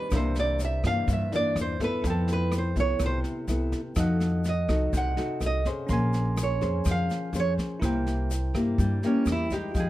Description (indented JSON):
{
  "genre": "bossa nova",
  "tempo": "125 BPM",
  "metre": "4/4",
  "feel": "straight",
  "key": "unclear",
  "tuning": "A4 = 441 Hz",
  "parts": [
    { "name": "nylon-string guitar", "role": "melody", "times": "0.0-9.9 s", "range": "Db4 to Gb5", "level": "-29 LUFS", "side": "right 3 dB", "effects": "plate reverb" },
    { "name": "bell-like tine electric piano", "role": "accompaniment", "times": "0.0-9.9 s", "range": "Db4 to C6", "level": "-37 LUFS", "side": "right 3 dB", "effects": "none" },
    { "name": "nylon-string guitar", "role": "accompaniment", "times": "0.0-9.9 s", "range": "G2 to C5", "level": "-30 LUFS", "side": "left 2 dB", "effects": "none" },
    { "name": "upright bass", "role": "bass", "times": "0.1-9.9 s", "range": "Bb1 to G2", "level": "-28 LUFS", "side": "equal", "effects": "none" },
    { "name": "jazz brush drum kit", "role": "drums", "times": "0.1-9.9 s", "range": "kick drum, rim click, snare drum", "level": "-34 LUFS", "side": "equal", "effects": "none" },
    { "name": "tube shaker", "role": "percussion", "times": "0.1-9.9 s", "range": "none", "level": "-46 LUFS", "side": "left 7 dB", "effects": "none" }
  ],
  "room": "light reverb",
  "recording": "dark, warm production",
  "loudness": "-24 LUFS",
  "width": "side -15 dB against mid",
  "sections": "0.0-9.9 A section",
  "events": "nylon-string guitar solo 0.0-9.9",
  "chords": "0.1 C9; 2.0 Fmaj9#11; 4.0 F7b9; 5.9 Bbm9; 7.8 C7"
}